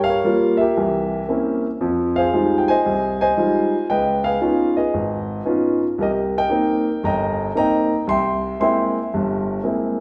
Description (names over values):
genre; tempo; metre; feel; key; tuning
solo jazz; 115 BPM; 4/4; swing 68% on 8ths; unclear; A4 = 440 Hz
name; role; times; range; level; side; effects
warm grand piano; solo; 0.0-10.0 s; G1 to C6; -20 LUFS; equal; none
room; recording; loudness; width
wet recital hall reverb, RT60 1.4 s; recorded in a church or concert hall; -20 LUFS; mono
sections
0.0-10.0 A section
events
none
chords
0.0 Gm7b5; 0.8 C7b9; 1.8 Fm9; 3.9 Db9; 6.0 Cm7; 8.1 C7b13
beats
0.24 0.76 1.28 | 1.81 2.33 2.85 3.37 | 3.89 4.42 4.94 5.46 | 5.98 6.50 7.03 7.55 | 8.07 8.60 9.12 9.64